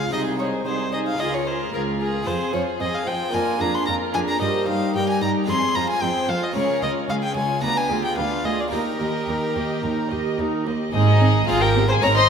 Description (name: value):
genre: classical, baroque-style concerto movement with solo episodes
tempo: 112 BPM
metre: 4/4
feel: straight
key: Ab major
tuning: A4 = 440 Hz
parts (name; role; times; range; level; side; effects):
- rich chamber violin section; melody; 0.0-12.3 s; F4 to C6; -29 LUFS; left 4 dB; none
- warm violin; melody; 0.0-12.3 s; Ab4 to C6; -24 LUFS; left 2 dB; none
- rich chamber violin section; second line; 0.0-12.3 s; Eb4 to Eb5; -29 LUFS; left 2 dB; none
- dark chamber viola section; accompaniment; 0.0-12.1 s; C4 to G4; -28 LUFS; right 3 dB; none
- harpsichord; accompaniment; 0.0-12.3 s; C2 to Ab4; -28 LUFS; left 1 dB; none
- rich chamber cello section; bass; 0.0-12.3 s; C2 to Ab2; -26 LUFS; right 3 dB; none
- rich chamber double bass section; bass; 10.9-12.3 s; Ab1; -26 LUFS; right 6 dB; none
room: wet scoring stage reverb, RT60 1.6 s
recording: none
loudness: -20 LUFS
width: side -7 dB against mid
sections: 0.0-10.9 A section; 10.9-12.3 B section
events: none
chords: 0.1 Ab/C; 1.2 Db; 2.3 Fm; 3.3 Bb7/F; 4.4 Eb/G; 5.5 Fm; 6.6 Db; 7.6 Ddim7; 8.7 Eb; 10.9 Ab